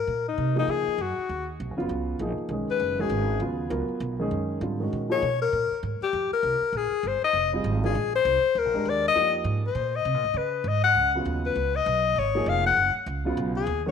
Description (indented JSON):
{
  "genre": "modal jazz",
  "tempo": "198 BPM",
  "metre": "4/4",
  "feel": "swing 61% on 8ths",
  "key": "unclear",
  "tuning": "A4 = 440 Hz",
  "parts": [
    { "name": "clear alto saxophone", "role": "melody", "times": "0.0-13.9 s", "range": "Eb4 to Gb5", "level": "-24 LUFS", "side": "left 7 dB", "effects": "tape echo" },
    { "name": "upright bass", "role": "bass", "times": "0.0-13.9 s", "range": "F1 to Db3", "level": "-30 LUFS", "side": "right 3 dB", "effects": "tube saturation" },
    { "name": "dark baby grand piano", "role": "accompaniment", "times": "0.6-5.2, 7.5-13.9 s", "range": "Db3 to Bb4", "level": "-29 LUFS", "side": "right 1 dB", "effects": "none" }
  ],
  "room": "moderate echo chamber reverb, RT60 1.2 s, small room ambience",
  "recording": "none",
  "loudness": "-23 LUFS",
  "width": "side -7 dB against mid",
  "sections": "0.0-13.9 A section",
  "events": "alto saxophone solo 0.0-13.9",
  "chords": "0.0 Bb9sus4; 0.7 Db9sus4; 5.5 Bb9sus4; 10.4 Db9sus4"
}